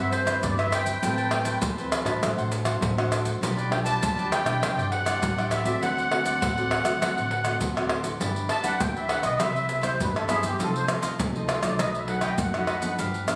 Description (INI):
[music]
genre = samba and choro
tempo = 100 BPM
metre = 4/4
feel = straight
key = G major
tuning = A4 = 438 Hz
[part]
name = musette accordion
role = melody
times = 0.0-13.0 s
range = G4 to A5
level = -30 LUFS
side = equal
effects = plate reverb
[part]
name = cavaquinho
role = accompaniment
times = 0.0-13.4 s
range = D4 to A5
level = -36 LUFS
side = equal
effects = none
[part]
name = nylon-string guitar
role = accompaniment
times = 0.0-13.4 s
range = F#2 to C5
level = -35 LUFS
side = equal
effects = none
[part]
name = upright bass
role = bass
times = 0.0-13.2 s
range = G1 to D3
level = -35 LUFS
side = equal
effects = none
[part]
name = maracas, pandeiro, surdo and tamborim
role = percussion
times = 0.1-13.4 s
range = none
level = -30 LUFS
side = equal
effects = none
[sound]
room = moderate small room ambience, RT60 0.5 s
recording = recorded on a phone in the room, studio reverb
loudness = -26 LUFS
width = mono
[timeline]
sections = 0.0-8.2 A section; 8.2-13.4 B section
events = accordion solo 8.2-13.4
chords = 0.0 Cmaj7/G; 1.0 Amadd9; 2.2 D7/A; 3.4 G7/B; 4.6 Cadd9; 5.8 D7; 8.2 G6; 9.4 Cmaj7; 10.6 F7/C; 11.8 B7